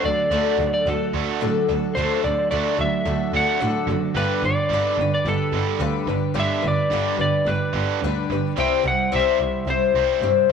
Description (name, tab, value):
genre	folk rock and heartland rock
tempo	109 BPM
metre	4/4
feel	straight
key	D mixolydian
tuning	A4 = 440 Hz
part	electric slide guitar	melody	0.0-10.2 s	A4 to G5	-24 LUFS	right 1 dB	none
part	picked twelve-string acoustic guitar	accompaniment	0.0-10.5 s	G2 to C5	-24 LUFS	left 11 dB	none
part	overdriven electric guitar	riff	0.0-10.5 s	G2 to C4	-26 LUFS	right 11 dB	none
part	clear double bass	bass	0.0-10.5 s	F#1 to A2	-27 LUFS	equal	none
room	wet spring reverb, RT60 2.9 s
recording	1960s-style stereo with parts hard left and right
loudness	-19 LUFS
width	side -6 dB against mid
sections	0.0-10.5 A section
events	none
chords	0.0 D; 4.2 G; 8.6 C